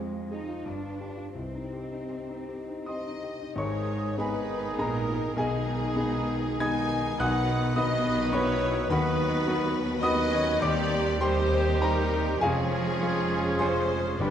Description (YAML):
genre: classical, romantic movement for piano and orchestra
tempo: 75-108 BPM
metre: 3/4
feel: rubato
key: C minor, G# minor from 3.6 s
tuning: A4 = 440 Hz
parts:
  - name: clear grand piano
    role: melody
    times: 0.0-14.3 s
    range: F1 to G#6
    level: -29 LUFS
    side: left 1 dB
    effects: none
  - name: warm symphonic violin section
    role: melody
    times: 0.0-14.3 s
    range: G#4 to G#5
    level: -37 LUFS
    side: left 5 dB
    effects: none
  - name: warm symphonic violin section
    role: second line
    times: 0.0-14.3 s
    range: G#4 to G#5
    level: -39 LUFS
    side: left 3 dB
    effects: none
  - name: clear symphonic viola section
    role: accompaniment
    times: 0.0-14.3 s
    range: G#3 to Ab4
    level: -35 LUFS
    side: right 1 dB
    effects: none
  - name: mellow French horn section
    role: sustained chords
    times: 0.0-14.3 s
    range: D#3 to Eb5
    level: -38 LUFS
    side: left 2 dB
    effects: none
  - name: warm symphonic cello section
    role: bass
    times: 0.0-14.3 s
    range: D#2 to Eb4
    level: -36 LUFS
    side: right 2 dB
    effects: none
  - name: rich symphonic double bass section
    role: bass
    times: 0.7-14.3 s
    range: F1 to D#2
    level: -35 LUFS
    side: right 3 dB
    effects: none
  - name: wooden flute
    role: second line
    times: 2.9-14.3 s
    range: G#4 to G#5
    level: -35 LUFS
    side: left 1 dB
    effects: none
  - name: dark clarinet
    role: second line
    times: 3.6-14.3 s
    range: D#4 to Ab4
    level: -39 LUFS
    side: equal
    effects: none
  - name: warm oboe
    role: second line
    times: 3.6-14.3 s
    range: C5 to D#5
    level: -39 LUFS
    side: right 2 dB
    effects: none
  - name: mellow bassoon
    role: accompaniment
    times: 3.6-14.3 s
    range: D3 to F3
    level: -37 LUFS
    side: right 3 dB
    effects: none
  - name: bright trumpet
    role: stabs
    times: 3.6-14.3 s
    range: F4 to B4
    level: -36 LUFS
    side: right 3 dB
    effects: none
  - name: timpani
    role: percussion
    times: 14.2-14.3 s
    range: G2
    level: -31 LUFS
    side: left 1 dB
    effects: none
room: moderate concert hall reverb, RT60 1.9 s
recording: none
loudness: -25 LUFS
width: side -9 dB against mid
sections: 0.0-3.6 A section; 3.6-14.3 B section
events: none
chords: 0.0 Fm; 0.7 G7; 1.4 Cm; 3.6 G#m; 5.4 G#m/B; 7.2 B; 8.9 B/D#; 10.6 Cm/Eb; 12.4 Db/F